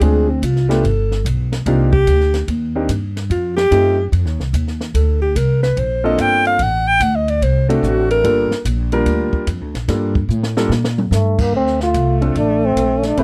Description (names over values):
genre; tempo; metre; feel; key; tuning
jazz, small-group swing and bop; 146 BPM; 4/4; swing 66% on 8ths; unclear; A4 = 444 Hz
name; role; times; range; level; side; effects
breathy alto saxophone; second line; 0.0-8.6, 11.5-13.2 s; A3 to G5; -20 LUFS; equal; none
warm grand piano; accompaniment; 0.0-13.2 s; G3 to B4; -21 LUFS; equal; none
upright bass; bass; 0.0-13.2 s; G1 to Bb2; -20 LUFS; equal; none
compact cocktail drum kit; drums; 0.0-13.2 s; crash cymbal, hi-hat, kick drum, ride cymbal, snare drum, toms; -25 LUFS; equal; none
trombone with cup mute; melody; 11.1-13.2 s; A3 to F4; -20 LUFS; equal; none
room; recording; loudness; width
little or no reverb; dry, close 1970s-style studio recording; -17 LUFS; mono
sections
0.0-11.5 A section; 11.5-13.2 B section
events
alto saxophone solo 0.0-11.5; drum fill 10.3-11.1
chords
0.0 Dm7b5; 0.8 G; 1.7 Cm7; 3.3 F7; 4.9 Bbmaj7; 6.6 D7; 8.2 Gm7; 11.5 Dm7